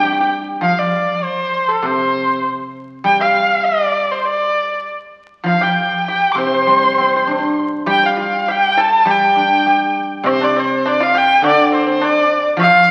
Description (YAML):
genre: chinese traditional, Chinese chamber ensemble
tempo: 100 BPM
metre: 2/4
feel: rubato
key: G shang mode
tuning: A4 = 445 Hz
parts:
  - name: warm erhu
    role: melody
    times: 0.0-12.9 s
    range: A4 to D6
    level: -16 LUFS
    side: equal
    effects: none
  - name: pipa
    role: second line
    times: 0.0-0.3, 5.5-12.9 s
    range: C4 to C5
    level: -24 LUFS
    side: equal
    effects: none
  - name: guzheng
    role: accompaniment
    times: 0.0-12.9 s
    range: C3 to G4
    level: -23 LUFS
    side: equal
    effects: none
  - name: woodblock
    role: percussion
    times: 10.3-12.7 s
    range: none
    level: -28 LUFS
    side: equal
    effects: none
room: wet recital hall reverb, RT60 1.5 s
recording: very old 78 rpm record, vinyl crackle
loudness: -15 LUFS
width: mono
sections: 0.6-10.3 A section; 10.3-12.9 B section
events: none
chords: none